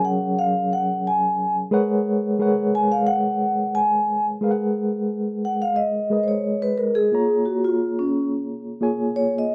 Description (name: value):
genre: soul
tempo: 89 BPM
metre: 4/4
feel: swing 54% on 16ths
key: G# dorian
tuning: A4 = 444 Hz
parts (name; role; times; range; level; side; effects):
- vibraphone with soft mallets; melody; 0.0-9.5 s; C#4 to G#5; -23 LUFS; equal; none
- reed electric piano; accompaniment; 0.0-9.5 s; F#3 to A#5; -25 LUFS; equal; fast tremolo
room: light reverb, small room ambience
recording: dark, warm production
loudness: -22 LUFS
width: mono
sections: 0.0-4.4 A section; 4.4-9.5 B section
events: vibraphone solo 4.4-9.5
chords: 0.0 F#maj7; 1.7 G#m11; 4.4 G#m9; 7.1 A#m7